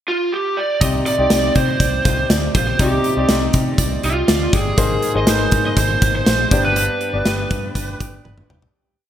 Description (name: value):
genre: 1980s-style pop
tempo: 121 BPM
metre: 4/4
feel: straight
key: C minor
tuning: A4 = 441 Hz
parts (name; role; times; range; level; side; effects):
- lead guitar through a small cranked amp; melody; 0.1-8.2 s; F4 to Eb5; -20 LUFS; right 2 dB; overdrive, digital delay
- clear concert grand piano; accompaniment; 0.8-8.8 s; G2 to D5; -22 LUFS; left 2 dB; none
- direct-recorded clean electric guitar; riff; 0.8-9.1 s; Bb3 to D5; -29 LUFS; right 3 dB; analog chorus
- vintage muted fingered electric bass; bass; 0.8-8.7 s; F1 to C3; -22 LUFS; equal; none
- gated 80s drum kit; drums; 0.8-8.7 s; hi-hat, kick drum, snare drum, toms; -18 LUFS; equal; none
room: moderate plate reverb, RT60 2.1 s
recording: bright 1980s-style digital production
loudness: -15 LUFS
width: side -10 dB against mid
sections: 0.0-0.8 pickup bar; 0.8-8.7 verse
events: fade-out 6.8-8.7; drum fill 8.2-8.7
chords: 0.0 N.C.; 0.8 Cmadd9; 4.8 Abadd9; 6.5 G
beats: 0.32 | 0.81 1.31 1.80 2.30 | 2.80 3.29 3.79 4.28 | 4.78 5.28 5.77 6.27 | 6.76 7.26 7.75 8.25